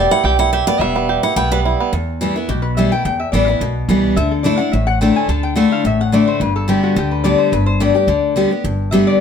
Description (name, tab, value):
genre	bluegrass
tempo	214 BPM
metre	4/4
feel	straight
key	E minor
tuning	A4 = 436 Hz
part	picked steel-string acoustic guitar	accompaniment	0.0-9.2 s	E2 to G5	-16 LUFS	left 2 dB	none
part	bluegrass banjo	arpeggios	0.0-1.9 s	G3 to G4	-16 LUFS	right 7 dB	none
part	upright bass	bass	0.0-9.0 s	E1 to E2	-20 LUFS	equal	none
part	lap resonator guitar	second line	2.5-9.2 s	F#4 to A5	-19 LUFS	left 6 dB	none
room	moderate studio reverb, RT60 0.7 s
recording	none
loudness	-14 LUFS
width	side -7 dB against mid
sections	0.0-1.9 A section; 1.9-9.2 A section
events	steel-string acoustic guitar solo 0.0-1.9; resonator guitar played with a steel bar solo 1.9-9.2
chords	0.0 Em; 4.2 Dsus2; 6.4 G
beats	0.24 0.53 | 0.81 1.09 1.37 1.65 | 1.93 2.21 2.49 2.77 | 3.05 3.33 3.61 3.89 | 4.17 4.45 4.73 5.01 | 5.29 5.57 5.85 6.13 | 6.41 6.69 6.97 7.25 | 7.53 7.80 8.08 8.36 | 8.64 8.92